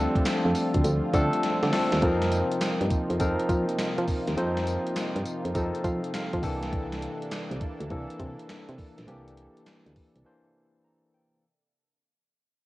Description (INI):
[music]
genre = R&B, new jack swing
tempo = 102 BPM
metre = 4/4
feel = swing 66% on 16ths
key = unclear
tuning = A4 = 440 Hz
[part]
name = barky tine electric piano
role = accompaniment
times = 0.0-11.5 s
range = E3 to Bb5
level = -28 LUFS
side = left 1 dB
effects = medium stereo tremolo, cassette tape
[part]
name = lush unison pad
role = sustained chords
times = 0.0-11.4 s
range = C3 to A4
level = -36 LUFS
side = right 2 dB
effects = chorus, cassette tape
[part]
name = solid FM bass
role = bass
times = 0.0-10.2 s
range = Bb1 to F3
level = -28 LUFS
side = equal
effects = none
[part]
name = gated 80s digital drum machine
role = drums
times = 0.2-10.2 s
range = handclaps, hi-hat, kick drum, snare drum, tambourine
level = -31 LUFS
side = equal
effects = gated reverb, gated reverb snare, cassette tape
[sound]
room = light reverb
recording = home recording on cassette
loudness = -24 LUFS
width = side -18 dB against mid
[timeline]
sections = 0.0-2.0 A section; 2.0-11.4 B section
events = drum fill 1.4-2.0; fade-out 2.0-11.4; tine electric piano fill 5.5-6.7, 10.6-11.4; break 10.3-11.4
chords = 0.0 Dm7; 2.0 F7sus4; 6.4 C13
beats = 0.26 0.84 1.43 | 2.02 2.61 3.20 3.79 | 4.37 4.96 5.55 6.14 | 6.73 7.32 7.90 8.49 | 9.08 9.67 10.26 10.84